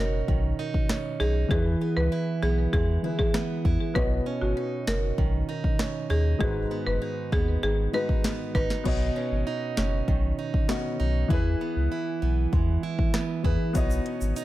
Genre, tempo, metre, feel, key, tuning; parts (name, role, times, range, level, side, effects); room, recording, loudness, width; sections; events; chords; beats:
dancehall; 98 BPM; 4/4; straight; B major; A4 = 440 Hz
buzzing marimba with hard mallets; melody; 0.0-8.7 s; F#4 to B4; -31 LUFS; left 1 dB; ping-pong delay
warm baby grand piano; accompaniment; 0.0-14.4 s; E3 to D#5; -32 LUFS; left 3 dB
picked plugged-in steel-string acoustic guitar; arpeggios; 0.0-14.4 s; G#2 to E4; -31 LUFS; right 6 dB
warm sub bass; bass; 0.0-14.3 s; F#1 to E2; -26 LUFS; equal
afro-pop drum kit; drums; 0.3-14.4 s; crash cymbal, hi-hat, kick drum, rim click, snare drum; -27 LUFS; equal
tube shaker; percussion; 13.8-14.4 s; -43 LUFS; right 3 dB
small room ambience; -24 LUFS; side -15 dB against mid
0.0-8.9 A section; 8.9-14.4 B section
0.0 Badd9; 1.5 E; 4.0 Badd9; 6.4 G#m7; 8.9 Badd9; 11.3 E; 13.8 Badd9
0.28 0.89 | 1.51 2.12 2.73 3.34 | 3.96 4.57 5.18 5.79 | 6.40 7.02 7.63 8.24 | 8.85 9.46 10.08 10.69 | 11.30 11.91 12.53 13.14 | 13.75 14.36